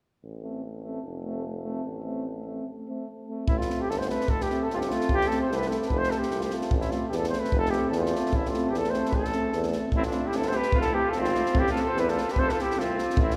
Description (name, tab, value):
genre	balkan folk, Balkan brass band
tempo	148 BPM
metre	2/4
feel	swing 56% on 16ths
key	A minor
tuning	A4 = 440 Hz
part	clear tuba	bass	0.2-13.4 s	F1 to E2	-35 LUFS	equal	none
part	clear trombone	accompaniment	0.4-13.2 s	A3	-38 LUFS	equal	none
part	warm euphonium	accompaniment	0.4-13.2 s	C4	-36 LUFS	equal	none
part	warm flugelhorn	melody	3.5-13.4 s	E4 to C5	-30 LUFS	equal	none
part	compact cocktail drum kit	percussion	3.5-13.3 s	kick drum, snare drum	-32 LUFS	equal	none
part	clear trumpet	second line	10.0-13.4 s	C4 to A4	-35 LUFS	equal	none
room	wet church reverb, RT60 3.1 s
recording	recorded in a church or concert hall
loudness	-27 LUFS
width	mono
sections	0.2-3.5 A section; 3.5-9.9 B section; 9.9-13.4 B section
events	none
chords	0.2 Am; 1.0 F; 1.8 Am; 4.3 F; 5.1 Am; 5.9 F; 6.7 Am; 7.5 F; 8.3 Am; 10.7 F; 11.6 Am; 12.4 F